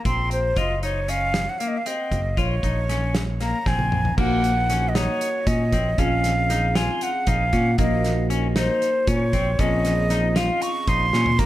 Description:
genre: progressive instrumental, band music in an uneven meter.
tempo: 233 BPM (eighths).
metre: 7/8.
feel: straight.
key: Bb minor.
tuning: A4 = 440 Hz.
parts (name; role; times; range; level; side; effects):
breathy concert flute; melody; 0.0-11.5 s; C5 to Db6; -24 LUFS; right 1 dB; digital delay.
clean electric guitar; arpeggios; 0.1-11.5 s; Bb3 to F4; -29 LUFS; left 5 dB; spring reverb, digital delay.
modern bright fingered electric bass; bass; 0.1-11.5 s; Gb1 to Bb2; -23 LUFS; equal; none.
loose indie drum kit; drums; 0.1-11.5 s; crash cymbal, hi-hat, kick drum, snare drum, splash cymbal, toms; -26 LUFS; equal; none.
bell-like tine electric piano; accompaniment; 4.2-11.5 s; Bb3 to Bb4; -30 LUFS; right 1 dB; analog chorus.
room: moderate small room reverb, RT60 0.5 s.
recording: none.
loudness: -19 LUFS.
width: side -14 dB against mid.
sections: 0.0-4.2 A section; 4.2-11.5 B section.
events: drum fill 3.7-4.2, 11.1.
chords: 0.0 Bbsus2; 0.6 Gbmaj7(no3); 2.4 Bbm9; 4.2 Ebm/Bb; 6.0 Bbm7; 7.8 Ebm/Bb; 9.6 Bbm7.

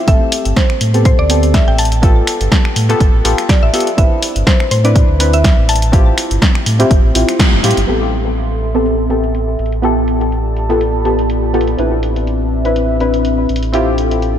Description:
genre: deep house.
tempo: 123 BPM.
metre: 4/4.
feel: swing 55% on 16ths.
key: unclear.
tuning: A4 = 440 Hz.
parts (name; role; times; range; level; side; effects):
mallet-like synth pluck; melody; 0.0-7.4 s; C5 to A5; -20 LUFS; left 1 dB; chorus, cassette tape, ping-pong delay.
deep mellow chord stab; stabs; 0.1-14.4 s; A3 to B4; -17 LUFS; left 1 dB; chorus, sidechain pumping, ping-pong delay.
sub bass with octave; bass; 0.1-14.4 s; G1 to A2; -16 LUFS; equal; sidechain pumping.
electronic kick drum; drums; 0.1-7.5 s; none; -11 LUFS; equal; overdrive.
punchy analog drum machine; drums; 0.1-14.3 s; finger snaps, hi-hat, snare drum; -20 LUFS; equal; low-pass filter on hats, low-pass filter on snare.
warbly tape-like pad; texture; 8.4-14.4 s; C4 to C6; -22 LUFS; left 2 dB; chorus, built-in reverb, sidechain pumping.
room: moderate church reverb, RT60 3.5 s.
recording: dreamy mix soaked in reverb.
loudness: -11 LUFS.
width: side -10 dB against mid.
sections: 0.0-7.9 A section; 7.9-14.4 B section.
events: band accent 7.4; filter sweep on drum 7.9-14.4.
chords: 0.1 Am9; 1.8 G9; 4.0 Cmaj9; 5.7 G13sus4; 7.9 Am9; 9.6 G9/A; 11.8 Cmaj9/A; 13.5 Dm11/A.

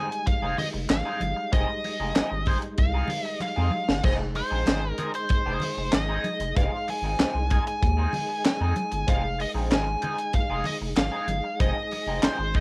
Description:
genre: funk.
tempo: 95 BPM.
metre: 4/4.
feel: straight.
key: F minor.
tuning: A4 = 441 Hz.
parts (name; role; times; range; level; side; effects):
nasal lead guitar with a parked wah; melody; 0.0-12.6 s; C5 to Ab5; -32 LUFS; equal; overdrive, cassette tape.
electric guitar at the edge of break-up; accompaniment; 0.0-12.6 s; F3 to Ab4; -36 LUFS; equal; wah, cassette tape.
percussive tonewheel organ; sustained chords; 0.0-12.6 s; G3 to Ab4; -39 LUFS; equal; slow rotary speaker, overdrive, chorus vibrato, cassette tape.
crisp fusion drum kit; drums; 0.1-12.6 s; handclaps, hi-hat, kick drum, snare drum, splash cymbal; -29 LUFS; equal; none.
congas; percussion; 0.3-12.4 s; none; -39 LUFS; equal; none.
round analog bass; bass; 0.4-12.6 s; F1 to F2; -31 LUFS; equal; none.
group handclap; percussion; 0.9-12.4 s; none; barely audible; none; none.
room: studio reverb.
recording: home recording on cassette.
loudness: -26 LUFS.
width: mono.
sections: 0.0-12.6 A section.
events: drum fill 3.4-4.0.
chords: 0.0 Fm7.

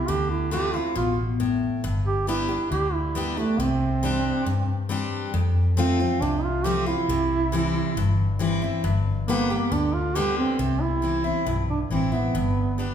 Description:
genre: honky-tonk and classic country.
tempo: 137 BPM.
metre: 4/4.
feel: straight.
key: C major.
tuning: A4 = 443 Hz.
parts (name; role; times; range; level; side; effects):
mellow duduk; melody; 0.0-12.9 s; A3 to G4; -25 LUFS; right 3 dB; none.
picked steel-string acoustic guitar; accompaniment; 0.0-12.9 s; F2 to G4; -26 LUFS; left 3 dB; none.
vintage muted fingered electric bass; bass; 0.0-12.9 s; G1 to G2; -27 LUFS; equal; none.
room: wet recital hall reverb, RT60 1.3 s.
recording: recorded in a church or concert hall.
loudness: -22 LUFS.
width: side -8 dB against mid.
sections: 0.0-10.6 A section; 10.6-12.9 B section.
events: duduk solo 0.0-10.6.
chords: 0.1 Dm7; 1.8 G; 3.6 Csus2; 5.3 F; 7.1 C; 8.8 G; 10.6 C; 12.3 G.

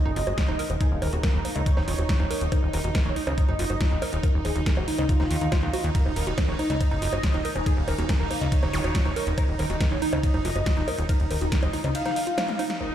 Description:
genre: psychedelic trance.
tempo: 140 BPM.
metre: 4/4.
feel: straight.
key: Eb minor.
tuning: A4 = 440 Hz.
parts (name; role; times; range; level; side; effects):
wide unison lead; melody; 0.0-12.9 s; Bb3 to F5; -32 LUFS; equal; phaser, sidechain pumping, tape echo.
vowel-sweep wobble bass; second line; 0.0-1.2, 5.9-8.9 s; Ab3 to Eb4; -44 LUFS; left 3 dB; none.
evolving wavetable pad; sustained chords; 0.0-12.9 s; Eb4; -34 LUFS; right 2 dB; phaser, built-in reverb, sidechain pumping.
woody wave-folded pluck; riff; 0.1-12.6 s; Eb4 to F5; -33 LUFS; moving between left 3 dB and right 5 dB; chorus, auto-pan, sidechain pumping, tape echo.
plucky analog bass; bass; 0.1-11.9 s; Eb1 to Eb2; -27 LUFS; equal; tube saturation.
big-room dance drum kit; drums; 0.2-12.9 s; bongos, hi-hat, ride cymbal, snare drum, toms; -32 LUFS; right 1 dB; none.
electronic kick drum; drums; 0.4-11.6 s; none; -23 LUFS; equal; none.
zap and impact; sound effects; 8.7-8.8, 12.8-12.9 s; none; -35 LUFS; equal; none.
rich chamber string section; texture; 12.8-12.9 s; Eb4; -32 LUFS; left 2 dB; sidechain pumping.
room: light reverb, digital ambience.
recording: played on a big sound system in a bare room, large studio reverb.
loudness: -22 LUFS.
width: side -11 dB against mid.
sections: 0.0-12.8 A section.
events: drop 0.0-12.8; drum fill 12.4-12.8; band accent 12.7.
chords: 0.0 Eb5.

